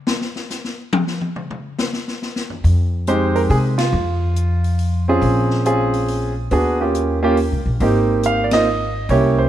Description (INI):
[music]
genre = jazz piano trio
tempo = 140 BPM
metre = 3/4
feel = swing 66% on 8ths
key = F minor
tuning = A4 = 439 Hz
[part]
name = swinging big-band drum kit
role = drums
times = 0.1-9.2 s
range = hi-hat, kick drum, ride cymbal, snare drum, toms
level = -24 LUFS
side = left 3 dB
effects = none
[part]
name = upright bass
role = bass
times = 2.6-9.5 s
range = Ab1 to C3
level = -19 LUFS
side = equal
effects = none
[part]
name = clear concert grand piano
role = melody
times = 3.1-9.5 s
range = Ab3 to F5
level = -17 LUFS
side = right 2 dB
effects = none
[sound]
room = light reverb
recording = none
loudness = -16 LUFS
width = side -11 dB against mid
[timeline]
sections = 0.0-2.6 A section; 2.6-9.5 B section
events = drum solo 0.0-2.6; band accent 3.7, 8.4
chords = 0.0 N.C.; 2.6 Fm9; 3.9 F5; 5.2 Bbm9; 6.5 Eb9; 7.8 Abmaj9